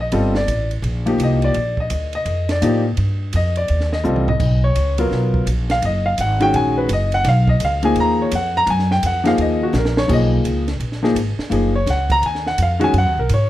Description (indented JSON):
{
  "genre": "modal jazz",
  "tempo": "168 BPM",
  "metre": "4/4",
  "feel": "swing 64% on 8ths",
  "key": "B lydian from 10.1 s",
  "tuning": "A4 = 440 Hz",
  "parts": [
    { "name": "warm upright piano", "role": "accompaniment", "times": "0.0-13.5 s", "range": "D#3 to A#5", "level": "-18 LUFS", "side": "left 1 dB", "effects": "none" },
    { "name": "upright bass", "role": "bass", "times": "0.0-13.5 s", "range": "F#1 to A2", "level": "-19 LUFS", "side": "equal", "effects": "none" },
    { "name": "compact cocktail drum kit", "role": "drums", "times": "0.1-13.4 s", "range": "crash cymbal, hi-hat, kick drum, ride cymbal, snare drum, toms", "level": "-27 LUFS", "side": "right 2 dB", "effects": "none" }
  ],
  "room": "light reverb",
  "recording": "none",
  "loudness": "-16 LUFS",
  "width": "side -14 dB against mid",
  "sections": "0.0-10.1 A section; 10.1-13.5 A section",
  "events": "drum fill 4.0-4.4, 9.7-10.1",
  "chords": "0.0 Ebmaj9; 4.4 Bmaj9"
}